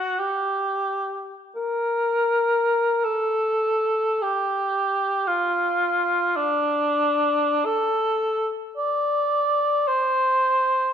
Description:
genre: classical, free, expressive piece for unaccompanied cor anglais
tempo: free time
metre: none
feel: none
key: D minor from 3.0 s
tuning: A4 = 440 Hz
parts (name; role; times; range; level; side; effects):
- mellow cor anglais; solo; 0.0-10.9 s; D4 to D5; -20 LUFS; equal; none
room: moderate recital hall reverb, RT60 1.7 s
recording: none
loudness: -20 LUFS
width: side -8 dB against mid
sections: 0.0-3.0 A section; 3.0-10.9 B section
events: none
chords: none

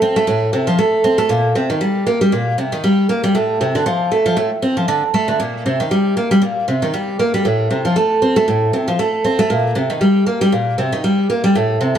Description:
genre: folktronica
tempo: 117 BPM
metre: 4/4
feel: swing 56% on 16ths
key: C dorian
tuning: A4 = 440 Hz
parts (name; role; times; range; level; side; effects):
- picked twelve-string acoustic guitar; solo; 0.0-12.0 s; A2 to C4; -14 LUFS; right 1 dB; none
room: moderate echo chamber reverb, RT60 1.3 s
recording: vinyl crackle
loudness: -14 LUFS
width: side -9 dB against mid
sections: 0.0-12.0 A section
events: none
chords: none

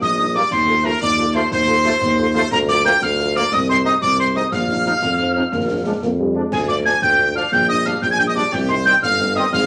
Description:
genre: military-style march for wind band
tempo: 120 BPM (dotted quarters)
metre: 6/8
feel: straight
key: unclear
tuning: A4 = 441 Hz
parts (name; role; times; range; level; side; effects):
- bright trumpet section; melody; 0.0-9.7 s; G4 to Ab5; -25 LUFS; equal; none
- piccolo; second line; 0.0-9.7 s; G5 to Ab6; -20 LUFS; equal; none
- mellow tuba; bass; 0.0-9.7 s; G1 to F2; -24 LUFS; equal; none
- concert snare drum, concert bass drum and clash cymbals; drums; 0.0-9.7 s; none; -32 LUFS; equal; none
- mellow French horn section; accompaniment; 0.2-9.4 s; F3 to C5; -31 LUFS; equal; none
- dark trombone section; sustained chords; 0.3-9.4 s; Eb3 to Eb4; -30 LUFS; equal; none
- mellow euphonium; second line; 5.0-6.5 s; D3 to C4; -25 LUFS; equal; none
room: wet studio reverb, RT60 0.6 s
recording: none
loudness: -17 LUFS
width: mono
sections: 0.0-9.7 A section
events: none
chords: 0.0 Eb; 0.5 F7/Eb; 2.5 Bb/D; 3.5 Ab/C; 4.5 Bbsus4; 5.5 Bb; 6.5 Fm69/D; 7.5 Gm/Bb; 8.5 Cm

